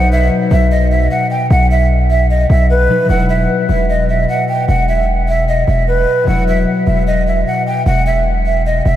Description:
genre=hip hop, trap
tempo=151 BPM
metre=4/4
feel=half-time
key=unclear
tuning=A4 = 440 Hz
part: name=breathy mellow jazz flute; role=melody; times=0.0-9.0 s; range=B4 to G5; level=-15 LUFS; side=right 1 dB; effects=diffuse ambient delay
part: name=concert harp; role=accompaniment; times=0.0-9.0 s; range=B2 to B4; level=-18 LUFS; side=left 3 dB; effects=none
part: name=hard-hitting 808-style bass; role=bass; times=0.0-9.0 s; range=E1 to B1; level=-14 LUFS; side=equal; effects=none
room=moderate cathedral reverb, RT60 6.0 s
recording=dreamy mix soaked in reverb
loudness=-11 LUFS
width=side -12 dB against mid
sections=0.0-3.1 A section; 3.1-9.0 B section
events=none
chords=0.0 B; 3.1 Esus2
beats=0.31 0.71 1.11 | 1.50 1.90 2.30 2.70 | 3.09 3.49 3.89 4.29 | 4.68 5.08 5.48 5.87 | 6.27 6.67 7.07 7.46 | 7.86 8.26 8.66

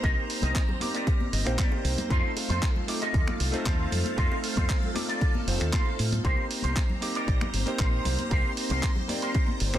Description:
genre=nu-disco, nu disco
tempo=116 BPM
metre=4/4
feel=straight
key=C dorian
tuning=A4 = 441 Hz
part: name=warm electric grand piano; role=accompaniment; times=0.0-9.8 s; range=A3 to D6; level=-34 LUFS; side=equal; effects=sidechain pumping, digital delay
part: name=string machine, full ensemble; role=sustained chords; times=0.0-9.8 s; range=A4 to Bb5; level=-36 LUFS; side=right 1 dB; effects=ensemble chorus, sidechain pumping
part: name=electric guitar with an envelope filter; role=riff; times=0.0-9.5 s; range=Eb4 to G5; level=-34 LUFS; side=right 1 dB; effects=ensemble chorus, digital delay
part: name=fingered electric bass with an envelope filter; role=bass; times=0.0-9.8 s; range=F1 to A2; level=-29 LUFS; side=equal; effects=none
part: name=dusty soul sampler-style drum kit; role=drums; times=0.0-9.8 s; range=finger snaps, handclaps, hi-hat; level=-34 LUFS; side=right 2 dB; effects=none
part: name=electronic kick drum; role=drums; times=0.0-9.5 s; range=none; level=-26 LUFS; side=equal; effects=none
part: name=bongos and congas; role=percussion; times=0.0-9.7 s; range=none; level=-38 LUFS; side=left 2 dB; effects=none
room=little or no reverb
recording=dense, heavily limited modern master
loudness=-24 LUFS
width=side -12 dB against mid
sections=0.0-9.8 A section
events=clean electric guitar fill 1.1-2.1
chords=0.0 Cm7; 2.1 F7; 6.2 Cm7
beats=| 0.04 0.56 1.07 1.59 | 2.11 2.62 3.14 3.66 | 4.18 4.69 5.21 5.73 | 6.25 6.76 7.28 7.80 | 8.31 8.83 9.35

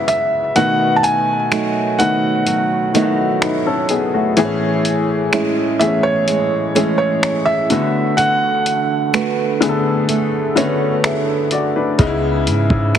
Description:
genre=contemporary R&B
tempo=63 BPM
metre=4/4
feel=straight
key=unclear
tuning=A4 = 440 Hz
part: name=felt-muted upright piano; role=melody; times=0.0-9.6 s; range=C#5 to A5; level=-18 LUFS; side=right 1 dB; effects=ping-pong delay
part: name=clear grand piano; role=accompaniment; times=0.0-13.0 s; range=C#3 to E5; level=-18 LUFS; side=left 3 dB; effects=none
part: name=flamenco guitar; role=arpeggios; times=0.0-13.0 s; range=A2 to G#4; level=-21 LUFS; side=right 7 dB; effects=ping-pong delay
part: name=dusty soul sampler-style drum kit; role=drums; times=0.1-13.0 s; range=finger snaps, hi-hat, kick drum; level=-21 LUFS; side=equal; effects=none
part: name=warm 808-style bass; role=bass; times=12.0-13.0 s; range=C#2 to G#2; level=-18 LUFS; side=equal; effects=none
room=moderate lush hall reverb, RT60 2.7 s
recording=heavily compressed radio sound, multiband compression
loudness=-14 LUFS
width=side -9 dB against mid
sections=0.0-13.0 A section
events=break 0.0-12.0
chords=0.0 C#m7; 0.6 B7; 4.4 Amaj7; 7.7 D6; 12.0 C#m7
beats=| 0.56 1.51 2.47 3.42 | 4.37 5.32 6.28 7.23 | 8.18 9.13 10.09 11.04 | 11.99 12.94

